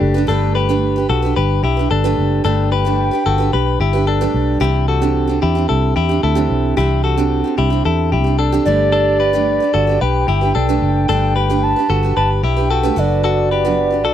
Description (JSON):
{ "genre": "indie pop", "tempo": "111 BPM", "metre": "4/4", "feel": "straight", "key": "G major", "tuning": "A4 = 441 Hz", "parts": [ { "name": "picked steel-string acoustic guitar", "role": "accompaniment", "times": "0.0-14.1 s", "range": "C3 to B4", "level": "-20 LUFS", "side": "right 9 dB", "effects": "none" }, { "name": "direct-recorded clean electric guitar", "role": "arpeggios", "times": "0.0-14.1 s", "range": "D4 to B4", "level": "-19 LUFS", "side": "left 8 dB", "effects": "slapback echo" }, { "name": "vintage muted fingered electric bass", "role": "bass", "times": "0.0-14.1 s", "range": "F#1 to E2", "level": "-18 LUFS", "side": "equal", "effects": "none" }, { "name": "warbly nostalgic lead", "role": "melody", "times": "2.4-4.3, 8.7-14.1 s", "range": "D5 to A5", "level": "-19 LUFS", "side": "equal", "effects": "chorus, slapback echo" } ], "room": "little or no reverb", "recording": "dry, close 1970s-style studio recording", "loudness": "-13 LUFS", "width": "side -10 dB against mid", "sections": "0.3-14.1 A section", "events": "none", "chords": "0.3 Gadd9; 4.6 Cadd9; 8.7 Gadd9; 13.0 Bm" }